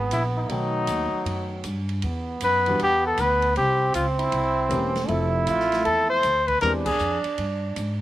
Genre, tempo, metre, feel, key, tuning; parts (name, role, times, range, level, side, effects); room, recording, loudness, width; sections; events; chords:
jazz, small-group swing and bop; 157 BPM; 4/4; swing 65% on 8ths; E minor; A4 = 440 Hz
bright trombone; second line; 0.0-8.0 s; F#3 to E4; -27 LUFS; right 4 dB; slapback echo
warm grand piano; accompaniment; 0.0-6.8 s; D#3 to G5; -30 LUFS; left 2 dB
upright bass; bass; 0.0-8.0 s; E1 to G#2; -28 LUFS; equal
breathy trumpet; melody; 0.1-7.2 s; D#4 to C5; -23 LUFS; left 1 dB; slapback echo
open jazz drum kit; drums; 0.1-7.9 s; crash cymbal, hi-hat, kick drum, ride cymbal, snare drum; -36 LUFS; right 1 dB
little or no reverb; -21 LUFS; side -14 dB against mid
0.0-2.0 A section; 2.0-8.0 B section
band accent 6.8
0.5 B7b13; 2.0 E7sus2; 3.6 C7b9; 5.1 Fmaj7; 6.6 E7alt